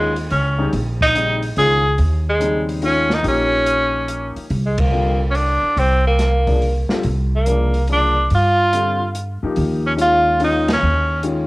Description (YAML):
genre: modal jazz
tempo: 143 BPM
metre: 3/4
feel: swing 66% on 8ths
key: unclear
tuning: A4 = 441 Hz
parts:
  - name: clear tenor saxophone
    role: melody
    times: 0.0-11.2 s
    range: Ab3 to Ab4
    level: -17 LUFS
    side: equal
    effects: cassette tape
  - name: warm concert grand piano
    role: accompaniment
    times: 0.0-11.5 s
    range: Db3 to G4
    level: -23 LUFS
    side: left 3 dB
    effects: cassette tape
  - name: upright bass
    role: bass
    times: 0.0-11.5 s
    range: Bb1 to G2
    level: -20 LUFS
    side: equal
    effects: none
  - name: open jazz drum kit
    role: drums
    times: 0.2-11.4 s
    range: hi-hat, kick drum, ride cymbal, snare drum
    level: -26 LUFS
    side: equal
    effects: cassette tape
room: moderate spring reverb, RT60 1.2 s, small room ambience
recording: home recording on cassette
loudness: -15 LUFS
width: side -21 dB against mid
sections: 0.0-11.5 A section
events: band accent 4.7, 10.6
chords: 0.0 Eb9sus4; 4.5 C9sus4; 9.6 Eb9sus4